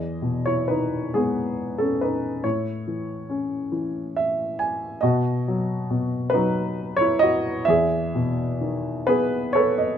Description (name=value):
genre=classical, lyrical solo piano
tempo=42-47 BPM (dotted quarters)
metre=6/8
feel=rubato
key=E major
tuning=A4 = 441 Hz
part: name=dark baby grand piano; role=solo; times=0.0-10.0 s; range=E2 to G#5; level=-21 LUFS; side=equal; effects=none
room=light reverb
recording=minimal, uncompressed stereo recording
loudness=-21 LUFS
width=side -8 dB against mid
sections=0.0-10.0 A section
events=grand piano fill 3.7-5.0, 9.1-10.0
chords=0.0 Emaj7; 2.4 A; 5.0 B; 7.7 Emaj7